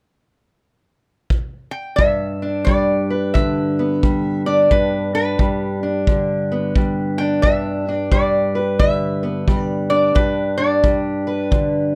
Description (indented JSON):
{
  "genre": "acoustic country blues, solo or duo",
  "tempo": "88 BPM",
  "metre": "4/4",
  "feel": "swing 63% on 8ths",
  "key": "G major",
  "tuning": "A4 = 440 Hz",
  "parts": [
    { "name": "kick drum", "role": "drums", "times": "1.3-11.7 s", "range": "none", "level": "-21 LUFS", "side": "equal", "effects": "none" },
    { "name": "lap resonator guitar", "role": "melody", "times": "1.7-12.0 s", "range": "B4 to G5", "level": "-22 LUFS", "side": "equal", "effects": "none" },
    { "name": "fingerpicked steel-string acoustic guitar", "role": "accompaniment", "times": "2.0-12.0 s", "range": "G2 to B4", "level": "-22 LUFS", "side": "equal", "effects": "none" }
  ],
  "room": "little or no reverb",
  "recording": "none",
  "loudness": "-18 LUFS",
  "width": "mono",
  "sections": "0.0-2.0 A section; 2.0-12.0 B section",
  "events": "none",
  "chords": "0.0 N.C.; 2.0 G"
}